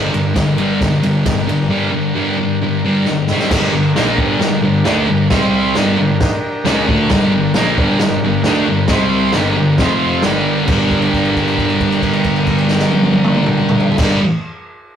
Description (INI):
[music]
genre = garage rock duo or trio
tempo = 134 BPM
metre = 4/4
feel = straight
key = G minor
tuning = A4 = 441 Hz
[part]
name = combo organ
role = sustained chords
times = 0.0-14.2 s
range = C4 to C5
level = -23 LUFS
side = right 1 dB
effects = none
[part]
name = thick fuzz guitar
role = riff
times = 0.0-14.2 s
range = F2 to D4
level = -14 LUFS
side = equal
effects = distortion
[part]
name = fuzz picked electric bass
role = bass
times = 0.0-14.2 s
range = F1 to D2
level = -23 LUFS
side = equal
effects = overdrive
[part]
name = vintage drum kit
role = drums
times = 0.1-14.1 s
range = crash cymbal, kick drum, ride cymbal, snare drum, toms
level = -19 LUFS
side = equal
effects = none
[sound]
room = wet studio reverb, RT60 0.6 s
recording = rough rehearsal-room recording, warm saturation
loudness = -12 LUFS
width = side -8 dB against mid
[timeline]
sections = 0.0-3.5 A section; 3.5-10.7 B section; 10.7-14.3 C section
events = drum fill 3.1-3.5; held note 10.7-14.0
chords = 0.0 Gm; 3.3 C5; 3.5 Gm; 5.3 C5; 5.8 Gm; 8.9 C5; 9.3 Gm; 9.8 F5; 10.2 Gm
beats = 0.36 0.81 1.26 | 1.71 2.16 2.61 3.06 | 3.51 3.96 4.41 4.86 | 5.31 5.76 6.21 6.66 | 7.10 7.55 8.00 8.45 | 8.90 9.35 9.79 10.24 | 10.69 11.13 11.58 12.03 | 12.47 12.92 13.37 13.81